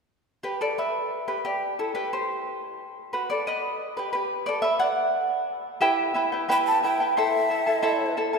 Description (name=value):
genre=andean folk, Andean ensemble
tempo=89 BPM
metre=2/4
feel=straight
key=E minor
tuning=A4 = 441 Hz
part: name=charango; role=accompaniment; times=0.4-8.4 s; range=E4 to A5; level=-24 LUFS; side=right 1 dB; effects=none
part: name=breathy large quena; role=melody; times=6.5-8.1 s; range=E5 to B5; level=-24 LUFS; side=left 2 dB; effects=none
room=wet church reverb, RT60 3.2 s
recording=recorded in a church or concert hall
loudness=-23 LUFS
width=side -4 dB against mid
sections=0.4-5.8 A section; 5.8-8.4 B section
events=charango solo 0.4-5.8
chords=0.4 G6; 1.8 Em; 3.1 B5; 4.5 D; 5.8 Em; 7.2 Am